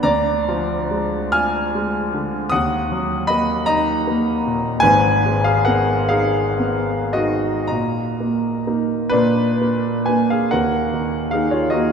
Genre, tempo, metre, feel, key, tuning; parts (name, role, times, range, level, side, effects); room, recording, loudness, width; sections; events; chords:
classical, romantic nocturne for solo piano; 35-53 BPM (dotted quarters); 12/8; rubato; Eb minor; A4 = 440 Hz
warm grand piano; solo; 0.0-11.9 s; Ab1 to F6; -16 LUFS; equal
wet cathedral reverb, RT60 4.7 s; recorded in a church or concert hall; -17 LUFS; side -6 dB against mid
0.0-10.5 A section; 10.5-11.9 B section
0.0 Bb7/D; 2.5 Ebm; 4.8 Abm; 7.7 Eb5/Bb; 9.1 Bb; 10.5 Ebm